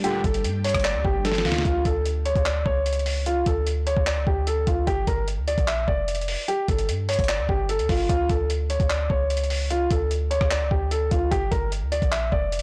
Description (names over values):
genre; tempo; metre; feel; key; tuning
hip hop, trap; 149 BPM; 4/4; half-time; D harmonic minor; A4 = 441 Hz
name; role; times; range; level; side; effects
dark grand piano; melody; 0.0-12.6 s; F4 to E5; -28 LUFS; equal; none
warbly lo-fi synth keys; accompaniment; 0.0-1.7 s; A3 to G4; -46 LUFS; equal; none
ethereal airy pad; sustained chords; 0.0-1.6 s; G3 to A4; -38 LUFS; equal; ensemble chorus, built-in reverb
dusty soul sampler-style drum kit; drums; 0.0-12.6 s; handclaps, hi-hat, kick drum, rim click, snare drum; -29 LUFS; equal; vintage 12-bit sampler grit
clean 808-style bass; bass; 0.2-12.6 s; F1 to G2; -28 LUFS; equal; none
room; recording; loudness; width
little or no reverb; blown-out, overdriven recording, overdrive; -24 LUFS; mono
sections
0.0-1.7 A section; 1.7-12.6 B section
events
drum fill 1.2-1.7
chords
0.0 Gmadd9; 1.7 Dmaj7(no3); 4.9 G5; 8.1 Dmaj7(no3); 11.3 Gm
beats
| 0.04 0.44 0.85 1.25 | 1.65 2.05 2.46 2.86 | 3.26 3.66 4.07 4.47 | 4.87 5.28 5.68 6.08 | 6.48 6.89 7.29 7.69 | 8.09 8.50 8.90 9.30 | 9.71 10.11 10.51 10.91 | 11.31 11.72 12.12 12.52